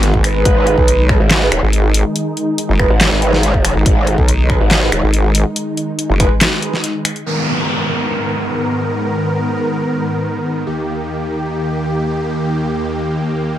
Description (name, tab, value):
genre	heavy wobble dubstep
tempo	141 BPM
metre	4/4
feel	half-time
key	G# minor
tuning	A4 = 441 Hz
part	supersaw chords	sustained chords	0.0-13.6 s	D#2 to A#4	-19 LUFS	equal	sidechain pumping, low-pass filter
part	vowel-sweep wobble bass	bass	0.0-6.3 s	F#1 to B1	-14 LUFS	equal	chorus, overdrive
part	dubstep drum kit	drums	0.0-7.2 s	finger snaps, handclaps, hi-hat, snare drum	-17 LUFS	equal	low-pass filter on hats, low-pass filter on cymbals, low-pass filter on snare, low-pass filter on room
part	electronic kick drum	drums	0.1-6.3 s	none	-16 LUFS	equal	none
part	warm brass ensemble	stabs	0.2-6.7 s	G#3 to B4	-19 LUFS	right 2 dB	digital delay
part	growl bass	bass	0.5-5.0 s	D#1 to G#1	-15 LUFS	equal	chorus, overdrive
part	downlifter	sound effects	7.3-10.7 s	none	-22 LUFS	equal	none
room	light reverb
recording	none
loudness	-13 LUFS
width	side -12 dB against mid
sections	0.0-7.3 A section; 7.3-13.6 B section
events	drop 0.0-7.3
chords	0.0 G#m; 7.3 G#madd9; 10.7 D#